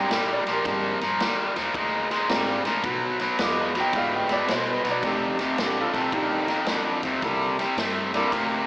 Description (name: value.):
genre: electric blues shuffle.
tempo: 109 BPM.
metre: 4/4.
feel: swing 65% on 8ths.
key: F mixolydian.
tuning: A4 = 440 Hz.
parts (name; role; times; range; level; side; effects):
warm baby grand piano; accompaniment; 0.0-8.3 s; Ab3 to D6; -28 LUFS; right 1 dB; slapback echo.
overdriven electric guitar; riff; 0.0-8.7 s; F2 to Bb3; -24 LUFS; left 1 dB; none.
upright bass; bass; 0.0-8.6 s; F1 to B2; -38 LUFS; equal; none.
swinging big-band drum kit; drums; 0.1-8.5 s; kick drum, ride cymbal, snare drum; -31 LUFS; equal; none.
room: moderate lush hall reverb, RT60 2.0 s, small room ambience.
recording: live gig heard through the venue's PA, club reverb, small speaker sound.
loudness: -22 LUFS.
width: side -21 dB against mid.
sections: 0.0-8.7 A section.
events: none.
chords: 0.0 Bb13; 2.8 Bdim7; 5.0 F13; 7.2 C13.